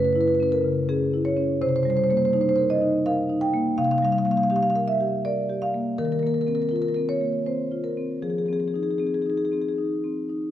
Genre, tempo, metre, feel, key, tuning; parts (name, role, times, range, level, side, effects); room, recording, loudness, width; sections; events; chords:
classical, contemporary piece for solo marimba; 82 BPM; 3/4; uneven beats, rubato; A4 = 440 Hz
marimba with soft mallets; solo; 0.0-10.5 s; F#2 to G5; -21 LUFS; equal
moderate recital hall reverb, RT60 1.5 s; -21 LUFS; side -11 dB against mid
0.0-10.5 A section
0.0 C#m7/F#; 1.6 Cm7; 3.8 Gm7/C; 6.0 Ebsus2; 8.2 Fm7